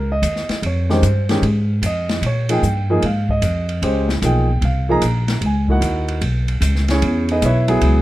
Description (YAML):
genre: modal jazz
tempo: 150 BPM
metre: 4/4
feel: swing 66% on 8ths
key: Bb dorian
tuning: A4 = 440 Hz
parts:
  - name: warm grand piano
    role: accompaniment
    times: 0.0-8.0 s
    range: Eb3 to Bb5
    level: -20 LUFS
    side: right 1 dB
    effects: none
  - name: upright bass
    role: bass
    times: 0.0-8.0 s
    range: Bb1 to Bb2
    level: -18 LUFS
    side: equal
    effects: none
  - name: open jazz drum kit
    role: drums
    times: 0.2-7.9 s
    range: hi-hat, kick drum, ride cymbal, snare drum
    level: -26 LUFS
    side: left 1 dB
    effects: none
room: little or no reverb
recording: dark, warm production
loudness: -16 LUFS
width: side -16 dB against mid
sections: 0.0-8.0 A section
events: none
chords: 0.0 Bbm9; 5.4 Dbm9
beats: 0.24 | 0.64 1.04 1.44 1.83 | 2.23 2.63 3.03 3.43 | 3.83 4.23 4.63 5.03 | 5.42 5.82 6.22 6.62 | 7.02 7.42 7.82